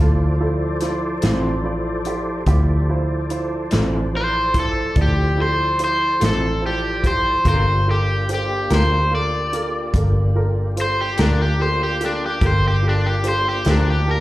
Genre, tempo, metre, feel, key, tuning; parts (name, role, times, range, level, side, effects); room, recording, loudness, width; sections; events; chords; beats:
slow blues; 48 BPM (dotted quarters); 12/8; straight; D minor; A4 = 439 Hz
warm baby grand piano; accompaniment; 0.0-14.2 s; E4 to A5; -26 LUFS; right 2 dB; slapback echo
tonewheel organ; sustained chords; 0.0-14.2 s; F3 to D5; -29 LUFS; equal; overdrive, chorus vibrato, slow rotary speaker
vintage muted fingered electric bass; bass; 0.0-14.2 s; G1 to D2; -20 LUFS; equal
warm soul drum kit; drums; 0.8-13.9 s; hi-hat, kick drum, snare drum; -21 LUFS; equal
electric guitar through a small old amp; accompaniment; 1.2-13.9 s; D3 to Bb4; -26 LUFS; left 2 dB; tremolo, slapback echo
overdriven semi-hollow guitar; melody; 4.2-14.2 s; D4 to D5; -21 LUFS; left 1 dB; spring reverb, slapback echo
little or no reverb; live gig heard through the venue's PA, club reverb; -17 LUFS; side -16 dB against mid
0.0-14.2 A section
0.0 Dm7; 7.5 Gm7
1.24 | 2.48 3.72 4.96 6.21 | 7.45 8.69 9.94 11.18 | 12.42 13.66